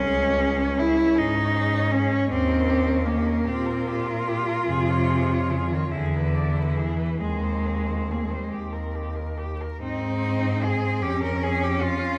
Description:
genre	classical, lyrical piece for cello ensemble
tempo	45-54 BPM (dotted quarters)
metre	6/8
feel	rubato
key	Ab major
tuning	A4 = 440 Hz
part	clear cello	melody	0.0-12.2 s	Eb4 to D5	-35 LUFS	equal	none
part	rich cello	second line	0.0-12.2 s	C4 to F4	-33 LUFS	equal	none
part	rich cello	accompaniment	0.0-12.2 s	C3 to Fb4	-27 LUFS	equal	none
part	warm cello	bass	0.0-12.2 s	Db2 to Bb2	-29 LUFS	equal	none
room	wet recital hall reverb, RT60 1.8 s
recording	vinyl crackle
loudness	-24 LUFS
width	mono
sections	0.0-9.8 A section; 9.8-12.2 B section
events	none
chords	0.0 Db5; 2.3 Eb; 4.7 Db/F; 5.9 E7; 7.2 Ab/Eb; 8.5 Eb; 9.8 Ab; 11.0 Db/F

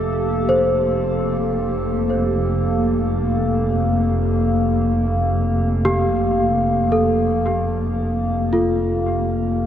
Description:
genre	ambient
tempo	56 BPM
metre	4/4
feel	straight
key	unclear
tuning	A4 = 440 Hz
part	warbly tape-like pad	sustained chords	0.0-9.7 s	Bb3 to A4	-20 LUFS	left 1 dB	chorus, built-in reverb, shimmer reverb
part	worn celesta	arpeggios	0.0-9.7 s	F4 to C5	-23 LUFS	equal	tape echo, shimmer reverb
part	rich studio double bass section	bass	0.0-9.7 s	F1	-22 LUFS	equal	none
room	wet cathedral reverb, RT60 5.8 s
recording	none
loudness	-17 LUFS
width	side -10 dB against mid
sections	0.0-9.7 A section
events	none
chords	0.0 Gmadd9/F

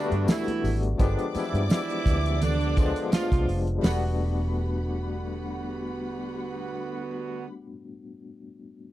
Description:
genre	lush 1970s-style soul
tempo	84 BPM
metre	4/4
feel	swing 54% on 16ths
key	E minor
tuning	A4 = 442 Hz
part	warm studio string section	second line	0.0-7.5 s	G4 to D6	-38 LUFS	left 1 dB	none
part	barky tine electric piano	accompaniment	0.0-8.9 s	F3 to G4	-32 LUFS	left 5 dB	overdrive, fast tremolo
part	warm horn section	stabs	0.0-7.5 s	D3 to F#4	-32 LUFS	right 6 dB	none
part	vintage muted fingered electric bass	bass	0.1-7.7 s	E1 to G2	-27 LUFS	equal	none
part	cloth-damped thuddy drum kit	drums	0.1-4.0 s	hi-hat, kick drum, snare drum	-24 LUFS	equal	none
part	congas	percussion	0.3-4.2 s	none	-33 LUFS	right 3 dB	none
part	tambourine	percussion	0.3-4.2 s	none	-47 LUFS	left 8 dB	none
room	little or no reverb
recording	dry, close 1970s-style studio recording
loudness	-24 LUFS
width	side -14 dB against mid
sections	0.0-3.8 A section; 3.8-6.7 B section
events	none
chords	0.0 Em11; 1.0 G7b9; 3.8 Em11

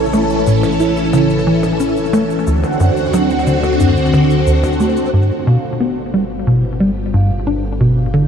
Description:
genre	ambient, sequencer-driven space music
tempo	90 BPM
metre	4/4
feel	straight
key	unclear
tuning	A4 = 443 Hz
part	phased string machine	sustained chords	0.0-8.3 s	D3 to A4	-16 LUFS	equal	ensemble chorus, phaser
part	analog drone	bass	0.0-8.3 s	G1 to D2	-24 LUFS	equal	chorus
part	tight sequencer bass	riff	0.1-8.3 s	D2 to E4	-15 LUFS	equal	wide subtle chorus, ping-pong delay
part	percussion blips and cabasa	percussion	0.1-5.1 s	none	-31 LUFS	left 1 dB	ping-pong delay
part	vibraphone with soft mallets	arpeggios	5.3-8.2 s	E4 to F5	-32 LUFS	moving between left 3 dB and right 5 dB	auto-pan, ping-pong delay
room	wet huge ambient reverb, RT60 8.0 s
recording	dreamy mix soaked in reverb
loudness	-12 LUFS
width	side -7 dB against mid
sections	0.0-5.1 A section; 5.1-8.3 B section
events	filter sweep on analog synth bass 0.0-5.1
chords	0.0 A; 2.5 D7; 5.1 G

